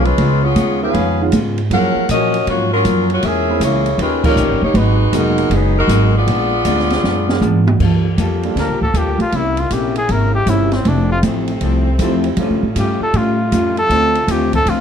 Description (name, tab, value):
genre	jazz, big band swing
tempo	157 BPM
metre	4/4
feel	swing 66% on 8ths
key	G minor from 7.8 s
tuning	A4 = 440 Hz
part	warm saxophone section	melody	0.0-7.7 s	Gb3 to Gb5	-17 LUFS	left 1 dB	none
part	clear grand piano	accompaniment	0.0-14.1 s	Eb3 to Bb4	-22 LUFS	right 6 dB	none
part	vintage hollow-body jazz guitar	accompaniment	0.0-14.8 s	Gb2 to A4	-21 LUFS	left 4 dB	none
part	upright bass	bass	0.0-14.8 s	Eb1 to Bb2	-17 LUFS	equal	none
part	open jazz drum kit	drums	0.1-14.8 s	crash cymbal, hi-hat, kick drum, ride cymbal, snare drum, toms	-24 LUFS	right 2 dB	none
part	mellow saxophone section	sustained chords	7.8-14.8 s	C3 to A4	-26 LUFS	equal	none
part	warm trumpet	melody	8.6-14.8 s	C4 to Bb4	-18 LUFS	left 2 dB	none
room	light reverb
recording	dark, warm production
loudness	-13 LUFS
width	side -8 dB against mid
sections	0.0-7.8 A section; 7.8-14.8 B section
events	band accent 4.2; drum fill 7.0-7.8; trumpet solo 7.8-14.8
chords	0.2 Db7; 1.7 Gbmaj7; 3.2 Bbm7b5; 4.0 Eb7; 4.8 Abm7; 6.3 Bb7b9; 7.8 Gm9; 9.3 C7b9; 10.9 Fmaj7; 12.4 A7alt; 13.9 Dm7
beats	| 0.18 0.56 0.94 1.32 | 1.71 2.09 2.47 2.85 | 3.23 3.61 3.99 4.37 | 4.75 5.13 5.51 5.89 | 6.28 6.66 7.04 7.42 | 7.80 8.18 8.56 8.95 | 9.33 9.71 10.09 10.47 | 10.85 11.23 11.61 11.99 | 12.38 12.76 13.14 13.52 | 13.90 14.28 14.66